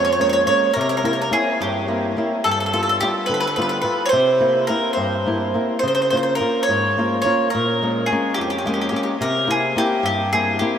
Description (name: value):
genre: italian folk, Italian serenade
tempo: 71 BPM (dotted quarters)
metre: 6/8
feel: rubato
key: unclear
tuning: A4 = 440 Hz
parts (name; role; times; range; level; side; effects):
- bowl-back mandolin; melody; 0.0-10.8 s; G4 to Db5; -19 LUFS; right 1 dB; none
- flamenco guitar; accompaniment; 0.0-10.8 s; F2 to F4; -22 LUFS; left 1 dB; none
room: wet huge ambient reverb, RT60 7.7 s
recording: in a vast, echoing space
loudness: -17 LUFS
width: side -8 dB against mid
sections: 0.0-10.8 A section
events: none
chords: 0.0 Bbm7; 0.8 C7; 2.4 G7; 4.1 C7; 5.8 Db6; 7.5 Bbm7; 9.2 C7